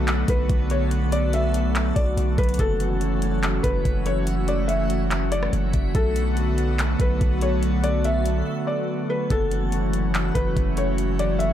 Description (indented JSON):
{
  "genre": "hip hop, atmospheric cloud-rap",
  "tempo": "143 BPM",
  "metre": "4/4",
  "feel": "half-time",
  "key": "F# minor",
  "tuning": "A4 = 440 Hz",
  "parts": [
    { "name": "felt-muted upright piano", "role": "melody", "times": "0.0-11.5 s", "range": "A4 to E5", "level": "-28 LUFS", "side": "left 1 dB", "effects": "digital delay" },
    { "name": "airy breathy pad", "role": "sustained chords", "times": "0.0-11.5 s", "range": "D3 to F#4", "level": "-26 LUFS", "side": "equal", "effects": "chorus, sidechain pumping" },
    { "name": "long sustained 808-style bass", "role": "bass", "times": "0.0-11.5 s", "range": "F#1 to B1", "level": "-24 LUFS", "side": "equal", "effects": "none" },
    { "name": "backwards swelling texture", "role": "texture", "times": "0.0-11.5 s", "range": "A3 to E5", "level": "-37 LUFS", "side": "left 1 dB", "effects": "built-in reverb" },
    { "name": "smooth R&B drum kit", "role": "drums", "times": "0.1-11.5 s", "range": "handclaps, hi-hat, kick drum, rim click", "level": "-26 LUFS", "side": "equal", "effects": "none" }
  ],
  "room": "little or no reverb",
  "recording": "none",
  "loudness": "-20 LUFS",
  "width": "side -11 dB against mid",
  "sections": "0.0-9.3 A section; 9.3-11.5 A section",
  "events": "break 8.5-9.3",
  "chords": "0.0 Bm7; 2.6 F#m7; 5.9 Bm7; 9.3 F#m7",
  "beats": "0.07 0.49 | 0.91 1.33 1.75 2.17 | 2.59 3.01 3.43 3.85 | 4.27 4.69 5.11 5.53 | 5.95 6.37 6.79 7.21 | 7.63 8.05 8.46 8.88 | 9.30 9.72 10.14 10.56 | 10.98 11.40"
}